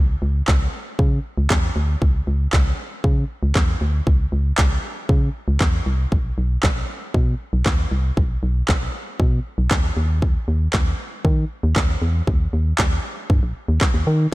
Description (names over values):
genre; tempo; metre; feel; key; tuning
dance-pop; 117 BPM; 4/4; straight; unclear; A4 = 440 Hz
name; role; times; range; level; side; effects
organ-like FM bass; bass; 0.0-14.3 s; A#1 to D#3; -20 LUFS; equal; sidechain pumping
pop drum kit; drums; 0.5-13.9 s; handclaps, kick drum, snare drum; -20 LUFS; equal; none
room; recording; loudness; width
little or no reverb; none; -18 LUFS; side -19 dB against mid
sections
0.0-14.3 A section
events
none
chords
none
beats
0.48 0.99 1.50 | 2.02 2.53 3.04 3.56 | 4.07 4.58 5.09 5.61 | 6.12 6.63 7.15 7.66 | 8.17 8.68 9.20 9.71 | 10.22 10.73 11.25 11.76 | 12.27 12.79 13.30 13.81